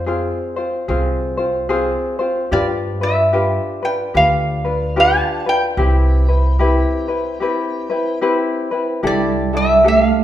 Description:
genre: Hawaiian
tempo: 74 BPM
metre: 4/4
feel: swing 61% on 8ths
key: C major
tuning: A4 = 440 Hz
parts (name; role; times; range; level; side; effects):
- metal-body resonator slide guitar; melody; 0.0-10.2 s; D5 to A5; -16 LUFS; right 1 dB; none
- tenor ukulele; accompaniment; 0.0-10.2 s; C4 to C5; -19 LUFS; left 2 dB; none
- upright bass; bass; 0.0-10.1 s; C2 to G2; -20 LUFS; equal; none
- vibraphone with soft mallets; second line; 9.1-10.2 s; G3 to A3; -19 LUFS; right 9 dB; none
room: wet recital hall reverb, RT60 1.7 s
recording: minimal, uncompressed stereo recording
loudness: -15 LUFS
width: side -12 dB against mid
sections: 0.0-9.0 A section; 9.0-10.2 A section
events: break 7.4-9.0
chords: 0.0 Fm; 2.5 G7; 5.8 Cmaj7; 9.0 C69

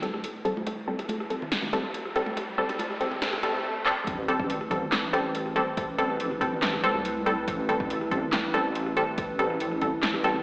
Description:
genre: deep dubstep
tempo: 141 BPM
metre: 4/4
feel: half-time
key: A minor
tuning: A4 = 439 Hz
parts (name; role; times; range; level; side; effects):
- dark analog pad; sustained chords; 0.0-10.4 s; A3 to B4; -34 LUFS; equal; lush chorus
- filtered dub chord stab; stabs; 0.0-10.3 s; G3 to A4; -27 LUFS; equal; chorus, vintage 12-bit sampler grit, dub echo
- deep house drum kit; drums; 0.0-10.4 s; handclaps, hi-hat, rim click, snare drum; -31 LUFS; equal; overdrive
- riser, swell and sub drop; sound effects; 0.2-5.8 s; none; -37 LUFS; equal; none
- congas and bongos; percussion; 0.6-3.4 s; none; -38 LUFS; equal; dub echo
- electronic kick drum; drums; 0.7-9.9 s; none; -36 LUFS; equal; overdrive, high-pass filter on kick, high-pass filter on room
- deep soft wobble bass; bass; 4.1-10.4 s; A1 to C2; -34 LUFS; equal; chorus
room: wet lush hall reverb, RT60 1.9 s, digital ambience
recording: played on a big sound system in a bare room, stone room reverb, high-pass filter, AM radio sound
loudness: -25 LUFS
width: side -25 dB against mid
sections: 0.0-4.1 A section; 4.1-10.4 B section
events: build-up 0.0-4.1; filter sweep on synth stab 0.0-4.1; filter sweep 0.0-4.1; riser 0.2-3.6; swell 3.2-4.1; drum fill 3.9; drop 4.1-10.4; impact 4.1-5.8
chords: 0.0 Am7

